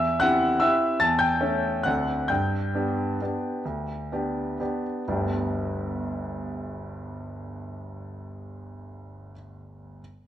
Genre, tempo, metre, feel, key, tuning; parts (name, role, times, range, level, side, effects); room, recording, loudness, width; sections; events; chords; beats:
classical, piano waltz; 122-158 BPM; 3/4; rubato; G major; A4 = 440 Hz
bright baby grand piano; solo; 0.0-10.0 s; G1 to A6; -25 LUFS; equal
moderate large studio reverb, RT60 1.3 s; worn, warbling old tape, cassette tape, warbly pitch drift; -23 LUFS; side -11 dB against mid
0.0-5.1 A section; 5.1-7.9 B section
slowing down 1.6-5.1
0.0 C/E; 1.0 A7/E; 1.9 D7; 2.3 G
0.23 0.62 | 1.02 1.42 1.85 | 2.29 2.74 3.20 | 3.66 4.12 4.60 | 5.08 5.54 6.01 | 6.47 6.94 7.41